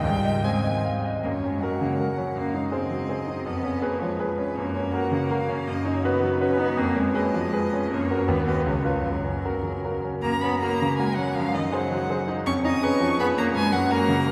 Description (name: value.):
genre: quick classical-period movement for piano trio.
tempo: 162 BPM.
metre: 3/4.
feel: rubato.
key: F# major.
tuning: A4 = 442 Hz.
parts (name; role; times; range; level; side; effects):
rich violin; melody; 0.0-14.3 s; A#4 to D#6; -34 LUFS; equal; none.
rich cello; second line; 0.0-14.3 s; D#3 to D#4; -31 LUFS; equal; none.
bright concert grand piano; accompaniment; 0.0-14.3 s; C#2 to F5; -26 LUFS; equal; none.
room: wet cathedral reverb, RT60 5.0 s.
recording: heard from further back in the room.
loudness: -25 LUFS.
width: mono.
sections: 0.0-1.2 A section; 1.2-10.2 B section; 10.2-14.3 B section.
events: none.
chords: 0.0 Ab; 1.2 F#; 2.4 G#7/F#; 3.5 C#7/E#; 4.6 F#; 5.7 B/F#; 6.8 C#7/E#; 7.9 F#; 8.3 B/D#; 8.7 C#7; 9.0 F#; 11.3 G#7/F#; 12.5 C#7/E#; 13.5 F#.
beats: | 0.04 0.45 0.84 | 1.24 1.61 1.99 | 2.36 2.73 3.09 | 3.46 3.83 4.19 | 4.56 4.93 5.29 | 5.67 6.04 6.41 | 6.78 7.15 7.53 | 7.91 8.28 8.66 | 9.04 9.44 9.83 | 10.23 10.61 10.98 | 11.35 11.72 12.09 | 12.46 12.82 13.19 | 13.55 13.91 14.27.